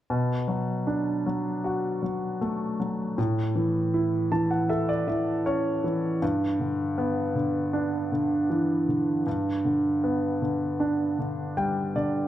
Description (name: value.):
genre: pop.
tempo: 78 BPM.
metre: 4/4.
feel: straight.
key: B minor.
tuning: A4 = 441 Hz.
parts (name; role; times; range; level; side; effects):
clear grand piano; solo; 0.1-12.3 s; G2 to A5; -24 LUFS; equal; none.
room: moderate concert hall reverb, RT60 1.8 s.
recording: dark, warm production.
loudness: -24 LUFS.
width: side -12 dB against mid.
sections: 0.1-12.3 A section.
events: grand piano fill 3.9-6.2, 11.2-12.3.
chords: 0.1 Bm7; 3.2 A; 6.2 G6; 9.3 G.